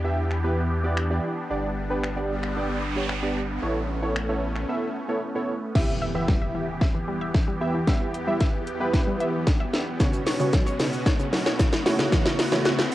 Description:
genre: dance-pop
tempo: 113 BPM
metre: 4/4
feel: straight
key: E dorian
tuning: A4 = 442 Hz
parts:
  - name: warm analog keys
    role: accompaniment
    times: 0.0-12.8 s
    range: C#3 to E5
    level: -28 LUFS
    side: right 2 dB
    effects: chorus, sidechain pumping
  - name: supersaw pad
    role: sustained chords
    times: 0.0-12.9 s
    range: E2 to G4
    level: -30 LUFS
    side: equal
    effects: phaser, sidechain pumping
  - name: saturated sub bass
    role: bass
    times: 0.0-4.7 s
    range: G1 to E2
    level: -28 LUFS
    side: equal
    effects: sidechain pumping
  - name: house drum kit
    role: drums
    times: 0.3-12.9 s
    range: crash cymbal, finger snaps, hi-hat, kick drum, shaker, snare drum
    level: -23 LUFS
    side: equal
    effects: cassette tape
  - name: noise sweep, riser and impact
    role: sound effects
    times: 2.1-12.9 s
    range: none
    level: -35 LUFS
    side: equal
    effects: none
  - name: wide unison pluck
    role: arpeggios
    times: 5.8-12.9 s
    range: C#3 to E5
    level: -32 LUFS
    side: left 2 dB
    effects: sidechain pumping, tape echo
  - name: tube shaker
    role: percussion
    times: 10.0-12.9 s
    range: none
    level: -50 LUFS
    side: right 5 dB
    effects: none
room: light reverb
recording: home recording on cassette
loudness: -22 LUFS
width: side -15 dB against mid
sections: 0.0-5.8 A section; 5.8-12.9 B section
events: noise sweep 2.1-5.8; build-up 5.8-12.9; drum fill 5.8-12.9; impact 5.8-7.9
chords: 0.0 Em7; 1.5 G; 3.6 Aadd9; 5.8 Em; 10.0 Bsus2; 11.9 A6/C#

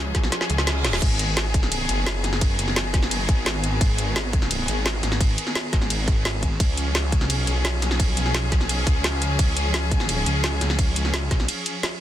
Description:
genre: dark technical drum and bass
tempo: 172 BPM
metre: 4/4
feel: straight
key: G# dorian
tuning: A4 = 444 Hz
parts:
  - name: clear studio string section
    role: sustained chords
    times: 0.0-12.0 s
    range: D#3 to G#4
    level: -28 LUFS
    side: left 2 dB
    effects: sidechain pumping
  - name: snarling distorted saw bass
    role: bass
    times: 0.0-11.5 s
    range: F#1 to C#2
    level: -25 LUFS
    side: equal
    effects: distortion, tube saturation, sidechain pumping
  - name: drum and bass drum kit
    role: drums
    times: 0.1-11.9 s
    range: crash cymbal, hi-hat, ride cymbal, snare drum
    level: -25 LUFS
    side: right 1 dB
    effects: none
  - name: electronic kick drum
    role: drums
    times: 0.1-11.4 s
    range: none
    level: -21 LUFS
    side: equal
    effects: none
  - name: reverse cymbal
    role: sound effects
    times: 0.5-1.0 s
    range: none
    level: -33 LUFS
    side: right 6 dB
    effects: none
room: little or no reverb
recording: dense, heavily limited modern master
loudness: -20 LUFS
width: side -12 dB against mid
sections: 0.0-12.0 A section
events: kick drops out 0.3-1.0; drum fill 0.3-1.0; reverse cymbal 0.5-1.0; break 11.5-12.0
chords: 0.0 C#; 1.0 G#m; 6.6 C#

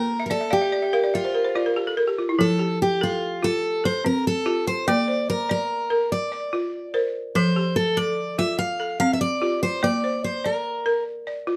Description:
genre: west african traditional, West African string and xylophone music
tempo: 97 BPM (dotted quarters)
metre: 12/8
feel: straight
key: unclear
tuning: A4 = 442 Hz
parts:
  - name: picked steel-string acoustic guitar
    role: melody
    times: 0.0-11.0 s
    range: F4 to F5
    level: -26 LUFS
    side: equal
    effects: none
  - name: balafon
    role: arpeggios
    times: 0.0-11.6 s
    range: F3 to F5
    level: -26 LUFS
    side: equal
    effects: none
room: light reverb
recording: dark, warm production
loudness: -23 LUFS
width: mono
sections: 0.0-11.6 A section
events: balafon fill 0.2-2.4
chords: 0.0 Bb; 2.4 F; 4.9 Bb; 7.4 F; 9.8 Bb

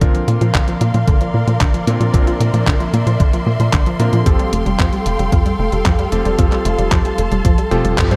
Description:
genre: italo disco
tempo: 113 BPM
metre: 4/4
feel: straight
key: F major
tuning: A4 = 440 Hz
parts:
  - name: warm symphonic string section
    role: sustained chords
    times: 0.0-8.2 s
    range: A4 to C6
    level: -26 LUFS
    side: equal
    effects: none
  - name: analog pluck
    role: arpeggios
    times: 0.0-8.2 s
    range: D3 to Bb3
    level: -25 LUFS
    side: equal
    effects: chorus, delay
  - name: bright electric grand piano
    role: stabs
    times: 0.0-8.2 s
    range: Bb2 to C5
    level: -26 LUFS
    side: equal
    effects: delay
  - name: tight sequencer bass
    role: bass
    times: 0.0-8.1 s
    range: F1 to Bb2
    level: -20 LUFS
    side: equal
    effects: none
  - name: detuned 8-bit digital drum machine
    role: drums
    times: 0.0-8.2 s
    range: handclaps, hi-hat, toms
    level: -25 LUFS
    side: equal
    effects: none
  - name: electronic kick drum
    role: drums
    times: 0.0-8.1 s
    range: none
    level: -18 LUFS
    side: equal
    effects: none
room: light reverb, digital ambience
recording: none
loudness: -15 LUFS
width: mono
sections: 0.0-8.2 A section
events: drum fill 7.7-8.2; band accent 8.0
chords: 0.0 Bbadd9; 4.3 Fadd9

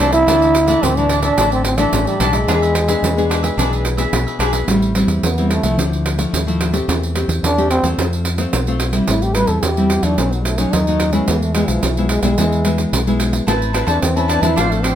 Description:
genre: samba and choro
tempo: 109 BPM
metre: 4/4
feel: straight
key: A minor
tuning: A4 = 437 Hz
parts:
  - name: growling trombone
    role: melody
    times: 0.0-15.0 s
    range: E3 to B4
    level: -18 LUFS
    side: right 1 dB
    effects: plate reverb
  - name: cavaquinho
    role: accompaniment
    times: 0.0-4.7, 13.5-15.0 s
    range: D4 to A5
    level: -22 LUFS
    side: left 1 dB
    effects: none
  - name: nylon-string guitar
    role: accompaniment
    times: 0.0-15.0 s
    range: F#2 to B4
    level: -20 LUFS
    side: left 2 dB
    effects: none
  - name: fingered electric bass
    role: bass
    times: 0.0-15.0 s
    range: A1 to F2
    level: -20 LUFS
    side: equal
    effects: none
  - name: pandeiro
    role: percussion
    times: 0.0-15.0 s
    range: none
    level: -22 LUFS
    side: right 4 dB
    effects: none
room: moderate studio reverb, RT60 0.9 s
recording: none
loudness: -14 LUFS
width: side -10 dB against mid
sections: 0.0-4.7 A section; 4.7-15.0 B section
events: trombone solo 4.7-15.0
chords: 0.3 Dsus2; 2.5 E7; 4.7 Am7; 5.8 Dmadd9; 6.9 Am7/E; 8.0 F; 9.1 Am7; 10.2 B7; 11.3 E; 13.5 Amadd9

